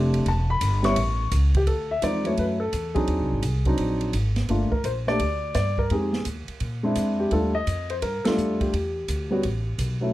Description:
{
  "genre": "jazz piano trio",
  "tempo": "170 BPM",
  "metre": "4/4",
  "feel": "swing 65% on 8ths",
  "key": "unclear",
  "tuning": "A4 = 441 Hz",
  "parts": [
    { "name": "dark baby grand piano", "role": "melody", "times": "0.0-10.1 s", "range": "F3 to C#6", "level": "-24 LUFS", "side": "left 1 dB", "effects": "none" },
    { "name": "upright bass", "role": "bass", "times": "0.0-10.1 s", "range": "E1 to Bb2", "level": "-26 LUFS", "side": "equal", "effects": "none" },
    { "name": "open jazz drum kit", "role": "drums", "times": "0.1-9.9 s", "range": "hi-hat, kick drum, ride cymbal, snare drum", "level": "-32 LUFS", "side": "right 2 dB", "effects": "none" }
  ],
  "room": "moderate club reverb, RT60 0.6 s",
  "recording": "dark, warm production",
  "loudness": "-22 LUFS",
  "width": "side -16 dB against mid",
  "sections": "0.0-1.7 A section; 1.7-10.1 B section",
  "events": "grand piano solo 0.0-1.7; band accent 8.2",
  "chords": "0.3 Em; 1.0 A; 1.7 Dmaj9; 3.1 G#7#11; 4.5 Gm; 5.9 Fm7; 6.6 Bb7; 7.3 Ebmaj9#11; 8.7 Em7; 9.4 A7sus2",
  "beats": "| 0.27 0.62 0.97 1.32 | 1.67 2.03 2.38 2.73 | 3.08 3.44 3.79 4.14 | 4.49 4.85 5.20 5.55 | 5.91 6.26 6.61 6.96 | 7.32 7.67 8.02 8.38 | 8.73 9.08 9.44 9.79"
}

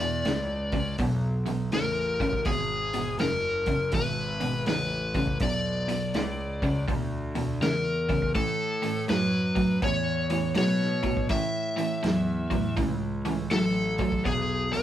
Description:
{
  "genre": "blues rock power trio and southern rock",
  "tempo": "82 BPM",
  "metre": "4/4",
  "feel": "swing 65% on 8ths",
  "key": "E mixolydian",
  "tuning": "A4 = 440 Hz",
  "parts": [
    { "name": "overdriven slide guitar", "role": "melody", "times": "0.0-14.8 s", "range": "G#4 to E5", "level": "-29 LUFS", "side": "left 2 dB", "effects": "none" },
    { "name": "crunchy overdriven guitar", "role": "riff", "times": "0.0-14.8 s", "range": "E2 to F#3", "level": "-29 LUFS", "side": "right 1 dB", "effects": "none" },
    { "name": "fuzz picked electric bass", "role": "bass", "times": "0.0-14.8 s", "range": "F#1 to B2", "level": "-31 LUFS", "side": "equal", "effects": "overdrive" },
    { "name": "vintage drum kit", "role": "drums", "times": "0.2-14.8 s", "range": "hi-hat, kick drum, snare drum", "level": "-32 LUFS", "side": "equal", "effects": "none" }
  ],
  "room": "moderate studio ambience, RT60 0.4 s",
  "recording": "band playing live in one room",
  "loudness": "-24 LUFS",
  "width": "side -11 dB against mid",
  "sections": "0.0-14.8 A section",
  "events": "none",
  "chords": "0.0 E; 8.4 A; 14.3 E",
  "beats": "0.26 1.00 1.73 | 2.47 3.20 3.94 4.67 | 5.41 6.14 6.88 7.62 | 8.35 9.09 9.83 10.56 | 11.30 12.04 12.78 13.52 | 14.26"
}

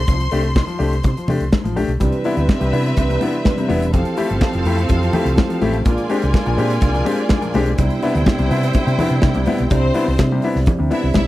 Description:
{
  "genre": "disco",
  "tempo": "124 BPM",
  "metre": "4/4",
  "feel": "straight",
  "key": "unclear",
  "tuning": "A4 = 440 Hz",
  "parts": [
    { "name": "clear studio string section", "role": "second line", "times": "0.0-11.3 s", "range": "C4 to C6", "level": "-25 LUFS", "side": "right 1 dB", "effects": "none" },
    { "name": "hollow-body short-scale fingered electric bass", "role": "bass", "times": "0.0-11.3 s", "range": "E1 to C3", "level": "-19 LUFS", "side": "equal", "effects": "none" },
    { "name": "clear baby grand piano", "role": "accompaniment", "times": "0.1-11.2 s", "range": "Bb2 to G4", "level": "-22 LUFS", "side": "left 3 dB", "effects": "none" },
    { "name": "modern studio drum kit", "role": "drums", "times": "0.1-11.3 s", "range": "hi-hat, kick drum, snare drum", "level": "-19 LUFS", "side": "equal", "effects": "none" },
    { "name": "congas", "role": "percussion", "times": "0.1-11.3 s", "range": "none", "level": "-24 LUFS", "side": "left 3 dB", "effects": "none" },
    { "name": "mellow tonewheel organ", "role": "sustained chords", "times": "2.0-11.3 s", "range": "B2 to B4", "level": "-23 LUFS", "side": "right 2 dB", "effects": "slow rotary speaker" }
  ],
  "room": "little or no reverb",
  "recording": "none",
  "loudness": "-15 LUFS",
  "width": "side -16 dB against mid",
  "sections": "0.0-2.0 A section; 2.0-9.7 B section; 9.7-11.3 C section",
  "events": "none",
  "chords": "0.0 F6; 2.0 Cmaj7; 3.9 Fmaj9; 5.9 Bb13; 7.8 Cmaj7",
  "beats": "| 0.08 0.56 1.04 1.53 | 2.01 2.49 2.97 3.46 | 3.94 4.42 4.90 5.38 | 5.87 6.35 6.83 7.31 | 7.79 8.27 8.76 9.24 | 9.72 10.20 10.68 11.16"
}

